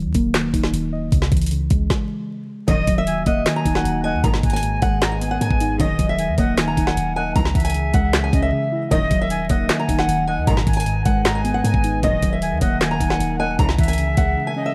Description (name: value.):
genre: hip hop, trap.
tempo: 154 BPM.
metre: 4/4.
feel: half-time.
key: Eb phrygian.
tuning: A4 = 440 Hz.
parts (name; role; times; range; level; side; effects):
muted felt-like synth keys; accompaniment; 0.0-14.7 s; Ab2 to Eb5; -26 LUFS; equal; chorus.
clean 808-style bass; bass; 0.0-14.4 s; Eb1 to Ab2; -26 LUFS; equal; none.
trap drum kit; drums; 0.1-14.3 s; handclaps, hi-hat, kick drum, snare drum; -23 LUFS; equal; none.
fingerpicked acoustic archtop guitar; melody; 2.7-14.7 s; Eb5 to Bb5; -27 LUFS; equal; digital delay.
breathy reedy jazz flute; second line; 2.7-14.7 s; Eb5 to Bb5; -30 LUFS; equal; digital delay.
warbly tape-like pad; sustained chords; 3.1-14.7 s; Db3 to Gb5; -35 LUFS; equal; chorus, built-in reverb.
dark symphonic string section; stabs; 2.7-13.8 s; Bb1 to Fb3; -30 LUFS; equal; none.
room: light reverb, small room reverb.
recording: vinyl crackle.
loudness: -19 LUFS.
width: mono.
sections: 0.0-2.7 A section; 2.7-14.7 B section.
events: stop 1.9-2.7; break 8.5-8.9, 14.4-14.7.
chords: 0.0 Ebm; 1.1 Dbm; 2.7 Ebm; 4.2 Abm; 5.8 Ebm; 7.4 Dbm; 8.9 Ebm; 10.5 Abm; 12.0 Ebm; 13.6 Dbm.